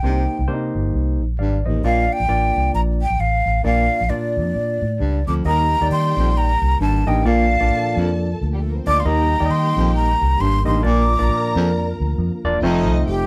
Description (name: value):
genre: soul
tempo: 133 BPM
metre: 4/4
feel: swing 59% on 8ths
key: unclear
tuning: A4 = 439 Hz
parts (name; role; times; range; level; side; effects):
- breathy hollow jazz flute; melody; 0.0-13.3 s; G4 to D6; -23 LUFS; equal; none
- barky tine electric piano; accompaniment; 0.0-13.3 s; A3 to F5; -26 LUFS; equal; overdrive
- breathy baritone saxophone; riff; 0.0-13.0 s; Eb2 to C3; -25 LUFS; equal; none
- vintage muted fingered electric bass; bass; 0.0-13.3 s; E1 to Eb3; -22 LUFS; equal; none
- dark studio string section; second line; 5.4-13.3 s; G3 to Bb5; -33 LUFS; equal; none
- mellow tonewheel organ; sustained chords; 5.5-13.3 s; D3 to Bb3; -34 LUFS; equal; none
room: light reverb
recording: band playing live in one room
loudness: -19 LUFS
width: mono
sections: 0.0-5.5 A section; 5.5-12.6 B section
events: none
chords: 0.0 Cm7; 1.8 Bb; 5.5 Eb; 7.3 Bb; 9.0 Eb; 10.8 Bb; 12.6 F7